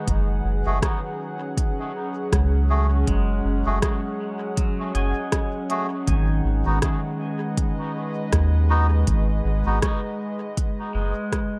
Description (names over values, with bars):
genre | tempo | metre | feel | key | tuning
ambient dub | 80 BPM | 4/4 | swing 57% on 16ths | unclear | A4 = 440 Hz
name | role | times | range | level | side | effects
warbly tape-like pad | sustained chords | 0.0-11.6 s | F#3 to F#5 | -32 LUFS | equal | chorus, built-in reverb
pedal steel guitar | arpeggios | 0.0-11.6 s | D#3 to G#5 | -34 LUFS | equal | dub echo
soft dub sub bass | bass | 0.1-11.1 s | F#1 to D#2 | -23 LUFS | equal | none
electronic kick drum | drums | 0.1-11.5 s | none | -27 LUFS | equal | none
organic electronic drum kit | drums | 0.1-11.5 s | hi-hat, rim click | -31 LUFS | equal | dub echo
melodica | stabs | 0.7-9.8 s | A3 to G#4 | -33 LUFS | equal | dub echo
room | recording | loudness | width
light reverb, digital ambience | dark, warm production | -23 LUFS | mono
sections
0.0-11.6 A section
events
fade-out 10.1-11.6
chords
0.1 F#sus2; 6.1 G#m7